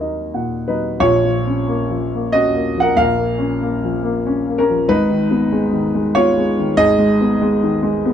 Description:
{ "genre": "neoclassical minimalist piano", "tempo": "94 BPM", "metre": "3/4", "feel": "rubato", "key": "unclear", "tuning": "A4 = 441 Hz", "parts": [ { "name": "dark grand piano", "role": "solo", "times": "0.0-8.1 s", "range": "G#1 to A#5", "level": "-15 LUFS", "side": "equal", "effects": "none" } ], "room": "light reverb", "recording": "close, detailed microphones", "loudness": "-14 LUFS", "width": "side -9 dB against mid", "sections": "0.0-1.0 A section; 1.0-8.1 B section", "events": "none", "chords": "0.0 D#m; 1.0 A#m; 4.9 G#m", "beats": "0.36 | 1.04 1.69 2.33 | 2.97 3.61 4.25 | 4.88 5.52 6.14 | 6.78 7.40 8.03" }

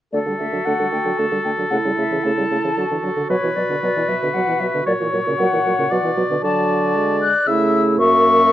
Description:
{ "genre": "quick classical-period movement for wind quintet", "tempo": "115 BPM", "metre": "3/4", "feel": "straight", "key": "D major", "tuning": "A4 = 440 Hz", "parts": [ { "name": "concert flute", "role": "melody", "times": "0.1-8.5 s", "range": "C#5 to F#6", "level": "-20 LUFS", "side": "left 4 dB", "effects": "none" }, { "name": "clear oboe", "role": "second line", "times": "0.1-8.5 s", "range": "A4 to E5", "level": "-22 LUFS", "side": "left 2 dB", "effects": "none" }, { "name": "mellow clarinet", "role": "accompaniment", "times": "0.1-8.5 s", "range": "E4 to F#4", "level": "-26 LUFS", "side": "right 7 dB", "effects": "none" }, { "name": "warm French horn", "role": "accompaniment", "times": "0.1-8.5 s", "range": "C#3 to A#3", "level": "-25 LUFS", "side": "equal", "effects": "none" }, { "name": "dark bassoon", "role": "bass", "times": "0.1-8.5 s", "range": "F#2 to D3", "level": "-22 LUFS", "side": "right 2 dB", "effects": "none" } ], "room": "light reverb", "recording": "worn, warbling old tape, cassette tape, warbly pitch drift", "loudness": "-16 LUFS", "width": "side -12 dB against mid", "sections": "0.1-8.5 A section", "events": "none", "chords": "0.1 D; 1.7 A/C#; 2.8 D; 3.3 Bm; 4.9 F#/A#; 5.9 Bm; 6.4 D; 7.5 A/C#; 8.0 F#7", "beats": "| 0.13 0.67 1.20 | 1.72 2.25 2.78 | 3.30 3.83 4.34 | 4.86 5.39 5.91 | 6.43 6.95 7.47 | 7.99 8.51" }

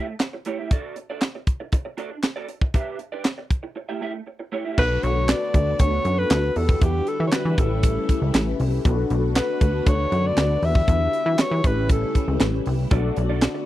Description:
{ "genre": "early-eighties boogie funk", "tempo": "118 BPM", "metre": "4/4", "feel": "straight", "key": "unclear", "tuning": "A4 = 440 Hz", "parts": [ { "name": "electric guitar through a small old amp", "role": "riff", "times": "0.0-4.8, 12.9-13.6 s", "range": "A3 to E5", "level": "-31 LUFS", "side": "right 5 dB", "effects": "ensemble chorus" }, { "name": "tight funk drum kit", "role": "drums", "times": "0.2-13.5 s", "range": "crash cymbal, handclaps, hi-hat, kick drum, snare drum", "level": "-20 LUFS", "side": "equal", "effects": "none" }, { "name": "breathy alto saxophone", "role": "melody", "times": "4.8-12.4 s", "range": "G4 to E5", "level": "-25 LUFS", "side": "left 1 dB", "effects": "none" }, { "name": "mellow synth brass", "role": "accompaniment", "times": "4.8-13.7 s", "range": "C#4 to D5", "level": "-28 LUFS", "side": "left 4 dB", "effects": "chorus" }, { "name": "phased string machine", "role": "sustained chords", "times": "4.8-13.7 s", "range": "C#3 to F#4", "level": "-32 LUFS", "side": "left 1 dB", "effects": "ensemble chorus, phaser" }, { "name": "plucky analog bass", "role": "bass", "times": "4.8-13.5 s", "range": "A1 to E3", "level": "-23 LUFS", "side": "equal", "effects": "none" } ], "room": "little or no reverb", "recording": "dry, close 1970s-style studio recording", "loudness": "-20 LUFS", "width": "side -14 dB against mid", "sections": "0.0-4.8 A section; 4.8-13.7 B section", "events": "break 3.8-4.8", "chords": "0.0 A7; 0.7 D; 2.5 Em7; 3.5 A7; 4.8 Bm7; 6.6 Em7; 7.6 A7; 8.8 Bm7; 10.6 Em7; 11.6 A7; 12.9 Bm7", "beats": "0.20 | 0.71 1.22 1.73 2.24 | 2.75 3.25 3.76 4.27 | 4.78 5.29 5.80 6.30 | 6.81 7.32 7.83 8.34 | 8.85 9.36 9.87 10.37 | 10.88 11.39 11.90 12.41 | 12.91 13.42" }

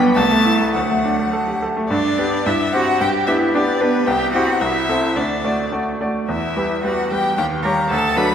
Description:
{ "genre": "quick classical-period movement for piano trio", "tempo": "99-114 BPM", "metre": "2/4", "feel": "rubato", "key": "G major", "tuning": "A4 = 440 Hz", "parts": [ { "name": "clear cello", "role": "second line", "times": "0.0-8.3 s", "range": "F#3 to B4", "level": "-22 LUFS", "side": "right 3 dB", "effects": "none" }, { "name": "bright grand piano", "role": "accompaniment", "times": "0.0-8.3 s", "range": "B1 to D5", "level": "-19 LUFS", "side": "equal", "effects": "none" }, { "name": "warm violin", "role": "melody", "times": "0.1-8.3 s", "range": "B4 to B5", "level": "-22 LUFS", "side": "left 4 dB", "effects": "none" } ], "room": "wet scoring stage reverb, RT60 2.0 s", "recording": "recorded in a church or concert hall", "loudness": "-16 LUFS", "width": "side -8 dB against mid", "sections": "0.0-1.9 A section; 1.9-8.3 B section", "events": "none", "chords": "0.2 Am/C; 0.7 D; 1.9 G; 2.5 C/G; 3.0 G; 4.1 C; 4.6 Am/C; 5.2 D; 6.3 Em; 7.4 Eb7", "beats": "0.16 | 0.75 1.33 | 1.90 2.46 | 3.01 3.54 | 4.07 4.61 | 5.17 5.72 | 6.29 6.84 | 7.38 7.91" }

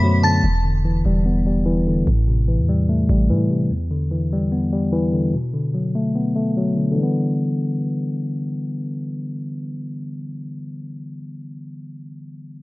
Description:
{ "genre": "hip hop, trap", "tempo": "147 BPM", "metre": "4/4", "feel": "half-time", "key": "E minor", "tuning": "A4 = 440 Hz", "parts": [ { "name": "mellow tine electric piano", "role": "accompaniment", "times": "0.0-12.6 s", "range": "E2 to B3", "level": "-20 LUFS", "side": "left 1 dB", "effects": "low-pass filter" }, { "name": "warm 808-style bass", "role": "bass", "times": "0.0-3.5 s", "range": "E1 to A2", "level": "-19 LUFS", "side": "equal", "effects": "none" } ], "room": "little or no reverb", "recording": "none", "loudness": "-18 LUFS", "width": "side -20 dB against mid", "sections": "0.4-7.0 A section; 7.0-10.2 B section", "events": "filter sweep on tine electric piano 0.4-7.0", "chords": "0.4 Em7; 2.1 Am7; 3.7 Em7; 5.3 Bm7; 7.0 Em7", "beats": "0.03 | 0.44 0.85 1.26 1.66 | 2.07 2.48 2.89 3.30 | 3.71 4.11 4.52 4.93 | 5.34 5.75 6.15 6.56 | 6.97 7.38 7.79 8.20 | 8.60 9.01 9.42 9.83" }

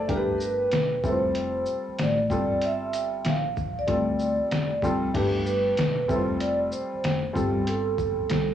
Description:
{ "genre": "hip hop, jazz-hop", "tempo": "95 BPM", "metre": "4/4", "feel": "swing 64% on 16ths", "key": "unclear", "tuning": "A4 = 440 Hz", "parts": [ { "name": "warm upright piano", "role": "accompaniment", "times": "0.0-8.4 s", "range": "G3 to D5", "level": "-29 LUFS", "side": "left 1 dB", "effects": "none" }, { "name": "upright bass", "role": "bass", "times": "0.0-8.5 s", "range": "E1 to D2", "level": "-31 LUFS", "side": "left 1 dB", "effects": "none" }, { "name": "vibraphone with soft mallets", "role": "melody", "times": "0.1-8.5 s", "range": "G4 to F5", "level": "-26 LUFS", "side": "right 1 dB", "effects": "none" }, { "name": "trip hop sampler-style drum kit", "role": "drums", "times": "0.1-8.5 s", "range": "crash cymbal, hi-hat, kick drum, shaker, snare drum", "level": "-29 LUFS", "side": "left 1 dB", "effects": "overdrive" } ], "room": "light reverb, studio ambience", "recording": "home recording on cassette", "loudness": "-23 LUFS", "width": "side -10 dB against mid", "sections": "0.0-5.1 A section; 5.1-8.5 A section", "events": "none", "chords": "0.1 G; 1.0 F69; 2.3 Gm9; 3.9 Dm7; 5.1 G; 6.1 Fadd9; 7.4 Gsus2", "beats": "| 0.09 0.72 1.35 1.99 | 2.62 3.25 3.88 4.51 | 5.14 5.78 6.41 7.04 | 7.67 8.30" }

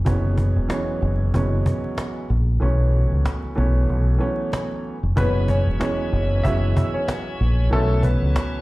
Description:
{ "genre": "hip hop, boom-bap hip-hop", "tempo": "94 BPM", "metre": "4/4", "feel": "swing 56% on 16ths", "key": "F# minor", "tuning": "A4 = 440 Hz", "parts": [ { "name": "dark baby grand piano", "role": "accompaniment", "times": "0.0-8.6 s", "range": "E3 to C#4", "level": "-26 LUFS", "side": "right 2 dB", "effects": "high-pass filter, low-pass filter" }, { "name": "deep dub fingered electric bass", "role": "bass", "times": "0.0-8.3 s", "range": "E1 to C#2", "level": "-19 LUFS", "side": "equal", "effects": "none" }, { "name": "cajon", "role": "drums", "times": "0.1-8.5 s", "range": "none", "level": "-24 LUFS", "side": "equal", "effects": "none" }, { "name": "warm upright piano", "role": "melody", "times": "5.2-8.6 s", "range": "A3 to E5", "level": "-26 LUFS", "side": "left 2 dB", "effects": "high-pass filter, low-pass filter, slapback echo" }, { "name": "tonewheel organ", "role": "sustained chords", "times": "5.2-8.6 s", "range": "E3 to A4", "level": "-35 LUFS", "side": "equal", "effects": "overdrive, slow rotary speaker, high-pass filter, low-pass filter" } ], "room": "light reverb", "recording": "played on a big sound system in a bare room, large studio reverb, vinyl crackle", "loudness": "-19 LUFS", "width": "side -19 dB against mid", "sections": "0.0-5.2 A section; 5.2-8.6 B section", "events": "kick muted 2.6-5.2", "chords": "0.1 F#9sus4; 2.6 B9sus4; 5.2 F#9sus4; 7.7 B9sus4", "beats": "| 0.06 0.70 1.34 1.98 | 2.61 3.25 3.89 4.53 | 5.17 5.81 6.44 7.08 | 7.72 8.36" }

